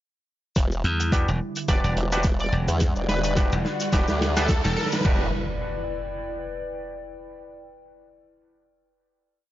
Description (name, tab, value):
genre	glitch hop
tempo	107 BPM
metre	4/4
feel	swing 56% on 16ths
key	E minor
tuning	A4 = 444 Hz
part	warm analog pad	sustained chords	0.6-5.3 s	D3 to F#5	-33 LUFS	right 3 dB	chorus, vintage 12-bit sampler grit, sidechain pumping
part	formant-sweep wobble bass	bass	0.6-5.3 s	E1 to E2	-26 LUFS	equal	chorus
part	electronic kick drum	drums	0.6-5.2 s	none	-23 LUFS	equal	overdrive
part	warm soul drum kit	drums	0.6-5.2 s	crash cymbal, hi-hat, snare drum	-30 LUFS	right 1 dB	none
part	cabasa	percussion	0.6-5.0 s	none	-37 LUFS	left 4 dB	none
part	riser and impact	sound effects	2.1-7.3 s	none	-33 LUFS	equal	none
part	warbly tape-like pad	texture	1.6-7.3 s	E4 to G5	-34 LUFS	left 4 dB	chorus, built-in reverb, phaser, sidechain pumping
part	glassy slap bass	bass	0.8-4.8 s	E1 to E2	-23 LUFS	equal	none
part	overdriven clav	stabs	1.1-5.3 s	D4 to B4	-31 LUFS	equal	sidechain pumping, analog delay
part	sync lead	melody	1.7-4.9 s	A4 to D5	-33 LUFS	equal	chorus, analog delay
room	studio reverb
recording	dry, gritty hardware recording, nothing above 7.5 kHz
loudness	-22 LUFS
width	side -14 dB against mid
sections	0.6-5.0 build; 5.0-7.3 final chord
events	build-up 0.6-5.0; drum fill 0.6-5.0; riser 2.1-5.0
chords	0.6 Em7